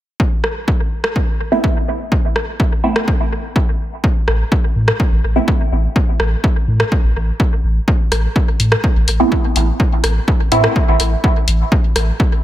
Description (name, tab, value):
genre	dub techno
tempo	125 BPM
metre	4/4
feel	straight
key	A minor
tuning	A4 = 440 Hz
part	electronic kick drum	drums	0.2-12.3 s	none	-15 LUFS	equal	overdrive
part	deep house drum kit	drums	0.4-12.1 s	hi-hat, rim click	-21 LUFS	equal	overdrive, dub echo
part	filtered dub chord stab	stabs	1.5-5.5, 9.2-10.8 s	A3 to E4	-19 LUFS	right 2 dB	phaser, sidechain pumping, dub echo
part	warm sub bass	bass	4.3-12.1 s	A1 to A2	-16 LUFS	equal	sidechain pumping
room	light reverb, digital ambience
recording	none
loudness	-13 LUFS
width	side -13 dB against mid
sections	0.2-7.9 A section; 7.9-12.4 B section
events	filter sweep on synth stab 0.2-7.9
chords	0.2 Amadd9; 7.9 N.C.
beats	| 0.20 0.68 1.16 1.64 | 2.12 2.60 3.08 3.56 | 4.04 4.52 5.00 5.48 | 5.96 6.44 6.92 7.40 | 7.88 8.36 8.84 9.32 | 9.80 10.28 10.76 11.24 | 11.72 12.20